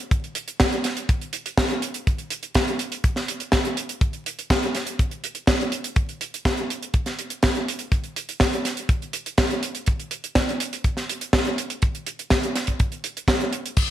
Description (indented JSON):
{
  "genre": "italo disco",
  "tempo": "123 BPM",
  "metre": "4/4",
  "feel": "straight",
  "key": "none",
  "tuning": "none",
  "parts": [
    { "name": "kick drum", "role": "drums", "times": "0.1-13.9 s", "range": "none", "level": "-22 LUFS", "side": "equal", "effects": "none" },
    { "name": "tight funk drum kit", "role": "drums", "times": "0.1-13.9 s", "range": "crash cymbal, hi-hat, snare drum, tambourine", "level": "-24 LUFS", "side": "right 1 dB", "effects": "gated reverb" }
  ],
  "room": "moderate plate reverb, RT60 1.2 s",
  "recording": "bright 1980s-style digital production, vinyl crackle",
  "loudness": "-22 LUFS",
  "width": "side -12 dB against mid",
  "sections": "0.0-13.8 A section",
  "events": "none",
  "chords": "none",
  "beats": "| 0.11 0.60 1.09 1.58 | 2.06 2.55 3.04 3.53 | 4.01 4.50 4.99 5.48 | 5.97 6.45 6.94 7.43 | 7.92 8.41 8.89 9.38 | 9.87 10.36 10.85 11.33 | 11.82 12.31 12.80 13.28 | 13.77"
}